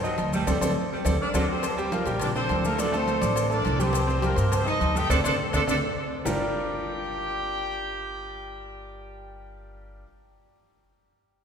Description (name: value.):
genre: latin, salsa.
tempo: 208 BPM.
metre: 4/4.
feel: straight.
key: G minor.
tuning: A4 = 440 Hz.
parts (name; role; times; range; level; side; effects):
clear saxophone section; second line; 0.0-1.5 s; F#3 to G3; -36 LUFS; right 1 dB; none.
bright concert grand piano; accompaniment; 0.0-10.0 s; D3 to Eb6; -30 LUFS; right 1 dB; none.
upright bass; bass; 0.0-10.0 s; G1 to G2; -30 LUFS; equal; none.
agogo bells and timbales; percussion; 0.0-6.3 s; none; -35 LUFS; right 2 dB; none.
congas; percussion; 0.0-6.3 s; none; -32 LUFS; equal; none.
maracas; percussion; 0.0-6.3 s; none; -40 LUFS; left 6 dB; none.
cowbell and bongos; percussion; 0.2-6.3 s; none; -37 LUFS; left 6 dB; none.
mellow horn section; melody; 1.2-9.3 s; A3 to G5; -28 LUFS; equal; none.
room: wet church reverb, RT60 3.3 s.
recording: recorded in a church or concert hall.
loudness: -23 LUFS.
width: side -7 dB against mid.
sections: 0.0-1.6 A section; 1.6-6.3 B section; 6.3-8.6 C section.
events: band accent 0.5-1.6, 5.1-6.3; drum fill 0.9-1.6, 5.4-6.3.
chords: 0.5 D7(no3); 1.6 Gm7; 2.8 D7(no3); 3.9 Cm; 5.1 D5; 6.3 Gm7.